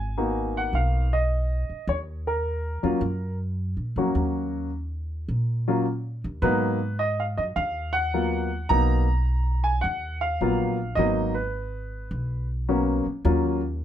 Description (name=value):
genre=jazz piano trio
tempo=105 BPM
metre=4/4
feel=swing 68% on 8ths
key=unclear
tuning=A4 = 440 Hz
part: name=warm baby grand piano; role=melody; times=0.0-13.6 s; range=Gb3 to Bb5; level=-25 LUFS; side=left 1 dB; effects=none
part: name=upright bass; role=bass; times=0.0-13.8 s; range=Ab1 to Bb2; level=-26 LUFS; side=equal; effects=none
room=little or no reverb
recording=close, detailed microphones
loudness=-23 LUFS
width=side -10 dB against mid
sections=0.0-13.8 A section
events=none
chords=0.0 Abm9; 1.9 Ebm7; 6.4 Abm9; 13.3 Ebm9